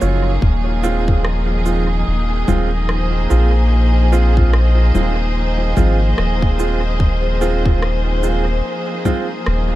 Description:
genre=ambient dub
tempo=73 BPM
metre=4/4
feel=swing 60% on 16ths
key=unclear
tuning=A4 = 440 Hz
part: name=rich symphonic string section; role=sustained chords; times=0.0-9.8 s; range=F3 to Db5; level=-22 LUFS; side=left 1 dB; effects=none
part: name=clear upright piano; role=stabs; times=0.0-9.3 s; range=Gb3 to F4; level=-23 LUFS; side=right 5 dB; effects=dub echo
part: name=soft dub sub bass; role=bass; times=0.0-9.8 s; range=Eb1 to Bb1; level=-16 LUFS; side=equal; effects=none
part: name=electronic cabasa, rim click and congas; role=drums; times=0.0-9.7 s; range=none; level=-28 LUFS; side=left 3 dB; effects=dub echo
part: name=electronic kick drum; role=drums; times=0.4-9.3 s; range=none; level=-17 LUFS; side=equal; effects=none
part: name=drifting glass-harmonics texture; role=texture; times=0.8-9.8 s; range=Eb5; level=-31 LUFS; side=right 1 dB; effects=chorus, built-in reverb
room=light reverb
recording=none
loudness=-14 LUFS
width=side -15 dB against mid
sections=0.0-9.8 A section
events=none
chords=0.4 Fm/Eb

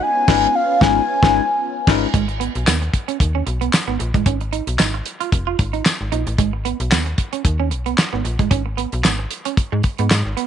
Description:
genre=early-eighties boogie funk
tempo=113 BPM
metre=4/4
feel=swing 56% on 16ths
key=G# dorian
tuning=A4 = 439 Hz
part: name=mellow horn-like synth lead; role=melody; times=0.0-1.9 s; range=E#5 to G#5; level=-18 LUFS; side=left 2 dB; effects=chorus, tape echo
part: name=string machine, violins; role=sustained chords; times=0.0-2.1 s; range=B3 to E#4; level=-27 LUFS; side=equal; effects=ensemble chorus
part: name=bell-like tine electric piano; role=accompaniment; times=0.3-2.1 s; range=G#3 to B4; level=-22 LUFS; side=left 14 dB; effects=medium stereo tremolo
part: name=slap-like FM bass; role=bass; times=0.3-10.4 s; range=E#1 to G#2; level=-22 LUFS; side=equal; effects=none
part: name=damped 70s drum kit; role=drums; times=0.3-10.5 s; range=crash cymbal, handclaps, hi-hat, kick drum, snare drum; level=-18 LUFS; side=equal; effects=none
part: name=electric guitar at the edge of break-up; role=riff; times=2.1-10.5 s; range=G#3 to E#4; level=-25 LUFS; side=right 16 dB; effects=wide subtle chorus
part: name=tambourine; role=percussion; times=2.7-10.2 s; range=none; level=-26 LUFS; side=left 18 dB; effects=none
room=light reverb, studio ambience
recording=1960s-style stereo with parts hard left and right, nothing above 10.6 kHz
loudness=-16 LUFS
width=side -9 dB against mid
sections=0.0-2.1 A section; 2.1-10.5 B section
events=band accent 0.0-2.1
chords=0.0 C#9/G#; 2.1 G#m; 4.3 C#add9/G# (rootless); 6.4 G#m; 8.5 N.C.

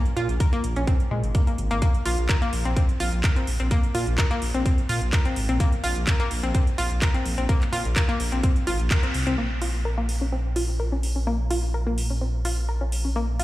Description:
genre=progressive house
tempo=127 BPM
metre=4/4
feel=straight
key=Bb minor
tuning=A4 = 440 Hz
part: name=house drum kit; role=drums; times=0.1-13.4 s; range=handclaps, hi-hat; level=-31 LUFS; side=right 1 dB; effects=none
part: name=analog pluck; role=arpeggios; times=0.2-13.4 s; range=Ab3 to Bb4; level=-28 LUFS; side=left 1 dB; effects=chorus, sidechain pumping, tape echo
part: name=dark detuned saw bass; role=bass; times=0.2-13.4 s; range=Ab1 to Bb2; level=-25 LUFS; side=equal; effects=sidechain pumping
part: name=electronic kick drum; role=drums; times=0.4-9.0 s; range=none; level=-21 LUFS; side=equal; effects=none
room=light reverb, digital ambience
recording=played on a big sound system in a bare room, large studio reverb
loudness=-21 LUFS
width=side -16 dB against mid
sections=0.0-9.4 A section; 9.4-13.4 B section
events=band accent 8.9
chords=0.0 Bb7(no3); 1.8 N.C.

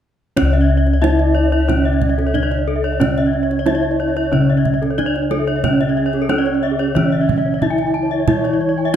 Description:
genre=Balinese gamelan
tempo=91 BPM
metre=4/4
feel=straight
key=C# pelog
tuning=A4 = 440 Hz
part: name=gamelan-type bronze metallophone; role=melody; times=0.4-9.0 s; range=C#4 to E4-30c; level=-19 LUFS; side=right 2 dB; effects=none
part: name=gamelan-type bronze metallophone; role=accompaniment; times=0.4-9.0 s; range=C#3 to E3-30c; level=-25 LUFS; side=left 4 dB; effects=none
part: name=gamelan-type bronze metallophone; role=arpeggios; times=0.4-9.0 s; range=A4-20c to A5-20c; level=-23 LUFS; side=left 6 dB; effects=none
part: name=gamelan-type bronze metallophone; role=arpeggios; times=0.4-8.9 s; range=G#4-30c to G#5-30c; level=-26 LUFS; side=right 7 dB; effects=none
part: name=gamelan-type bossed gongs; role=bass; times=0.4-9.0 s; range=C#2 to E4-30c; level=-19 LUFS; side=left 2 dB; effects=none
part: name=kendang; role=percussion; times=0.4-9.0 s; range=none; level=-24 LUFS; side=right 6 dB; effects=none
part: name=breathy xiao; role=second line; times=1.2-9.0 s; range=G#4-25c to E5-28c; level=-27 LUFS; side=right 1 dB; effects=none
room=moderate recital hall reverb, RT60 1.3 s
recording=dark, warm production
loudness=-14 LUFS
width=side -10 dB against mid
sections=0.4-9.0 A section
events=none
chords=none

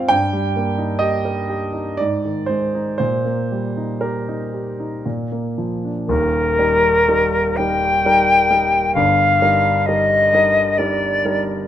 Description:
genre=classical, romantic duo for flute and grand piano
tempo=58-67 BPM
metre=3/4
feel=rubato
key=Eb major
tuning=A4 = 440 Hz
part: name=warm grand piano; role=accompaniment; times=0.0-11.7 s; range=Eb1 to G5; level=-20 LUFS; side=right 1 dB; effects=none
part: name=silver concert flute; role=melody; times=6.1-11.4 s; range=Bb4 to G5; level=-15 LUFS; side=left 2 dB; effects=none
room=moderate recital hall reverb, RT60 1.4 s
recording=close, detailed microphones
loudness=-16 LUFS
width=side -11 dB against mid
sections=0.0-6.1 A section; 6.1-11.7 B section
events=none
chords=0.1 Eb/G; 2.0 Ab; 3.0 Eb/Bb; 5.1 Bb; 6.1 Eb; 9.0 Eb/G

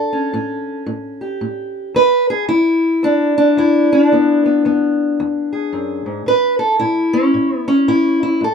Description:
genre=acoustic country blues, solo or duo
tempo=111 BPM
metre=4/4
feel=swing 61% on 8ths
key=E mixolydian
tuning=A4 = 439 Hz
part: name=fingerpicked steel-string acoustic guitar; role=solo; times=0.0-8.5 s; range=E2 to B4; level=-14 LUFS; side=left 1 dB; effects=none
room=moderate booth ambience, RT60 0.2 s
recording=minimal, uncompressed stereo recording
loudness=-13 LUFS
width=side -6 dB against mid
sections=0.0-8.5 A section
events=none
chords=0.0 A7; 1.9 E7; 6.3 A

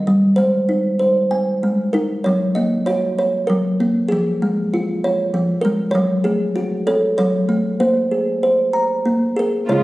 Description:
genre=children's music, lullaby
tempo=97 BPM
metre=3/4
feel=straight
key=unclear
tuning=A4 = 440 Hz
part: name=kalimba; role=melody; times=0.0-9.8 s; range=Db3 to Bb5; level=-16 LUFS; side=equal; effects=none
part: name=dark studio string section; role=sustained chords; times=9.7-9.8 s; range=Db3 to F4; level=-16 LUFS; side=right 1 dB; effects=none
room=wet recital hall reverb, RT60 1.5 s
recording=recorded on a phone in the room, studio reverb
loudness=-16 LUFS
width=side -18 dB against mid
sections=0.0-9.7 A section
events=none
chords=0.4 Ab; 2.3 Gb; 4.1 Db/F; 6.0 Gbm; 7.8 Abadd9

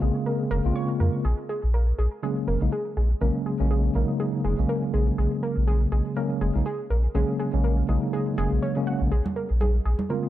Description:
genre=deep house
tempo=122 BPM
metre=4/4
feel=swing 57% on 16ths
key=unclear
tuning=A4 = 443 Hz
part: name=warbly dusty pluck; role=arpeggios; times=0.0-10.2 s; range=Ab4 to Db6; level=-32 LUFS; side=right 1 dB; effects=chorus, tape echo
part: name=mellow tine electric piano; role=stabs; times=0.0-10.3 s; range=Db3 to Ab4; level=-26 LUFS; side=equal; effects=medium stereo tremolo, tape echo
part: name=sub bass with octave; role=bass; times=0.0-9.9 s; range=F1 to F2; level=-23 LUFS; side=equal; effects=none
part: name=congas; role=percussion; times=9.3-10.1 s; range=none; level=-31 LUFS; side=right 3 dB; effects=none
room=digital ambience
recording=dry, gritty hardware recording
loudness=-22 LUFS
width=side -13 dB against mid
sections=0.0-10.3 A section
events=none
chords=0.0 Bbm7; 1.2 Gbadd9; 9.1 Bbm7

